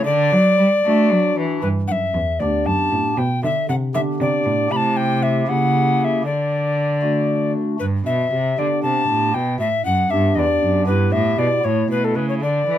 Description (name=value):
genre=classical, baroque-style sonata movement with continuo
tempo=78 BPM (dotted quarters)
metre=6/8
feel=straight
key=G major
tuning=A4 = 440 Hz
part: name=alto recorder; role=melody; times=0.0-12.8 s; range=A4 to B5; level=-19 LUFS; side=left 2 dB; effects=none
part: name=pipe organ, stopped flute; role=accompaniment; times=0.0-12.8 s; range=D2 to G4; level=-23 LUFS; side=left 1 dB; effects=none
part: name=warm cello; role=bass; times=0.0-12.8 s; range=D2 to A3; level=-21 LUFS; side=right 2 dB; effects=none
room=moderate studio reverb, RT60 0.7 s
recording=none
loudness=-16 LUFS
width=side -11 dB against mid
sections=0.0-1.6 A section; 1.6-12.8 A section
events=none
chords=0.1 D; 1.6 G; 3.2 G/B; 4.7 Am7/C; 5.5 C#dim7; 6.3 D; 7.8 G; 10.9 Em/G; 11.6 A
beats=| 0.06 0.85 | 1.64 2.41 | 3.18 3.94 | 4.71 5.48 | 6.25 7.03 | 7.81 8.58 | 9.35 10.11 | 10.87 11.64 | 12.42